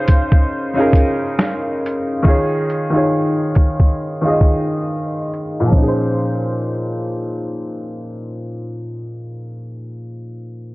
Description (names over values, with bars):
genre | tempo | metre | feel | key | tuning
lo-fi hip hop | 69 BPM | 4/4 | swing 56% on 16ths | Bb minor | A4 = 437 Hz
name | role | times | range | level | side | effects
bright upright piano | accompaniment | 0.0-10.7 s | Bb2 to Eb5 | -18 LUFS | equal | cassette tape
boom bap sampler-style drum kit | drums | 0.1-5.9 s | finger snaps, hi-hat, kick drum, snare drum | -13 LUFS | equal | vintage 12-bit sampler grit
room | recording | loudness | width
digital ambience | dry, gritty hardware recording, low-pass filter | -15 LUFS | side -21 dB against mid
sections
0.0-5.7 A section; 5.7-9.2 B section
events
filter sweep 0.0-5.7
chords
0.0 Bbm11/Db; 2.2 Eb9sus4; 5.7 Bbm11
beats
0.51 1.38 | 2.25 3.12 3.98 4.85 | 5.72 6.59 7.46 8.33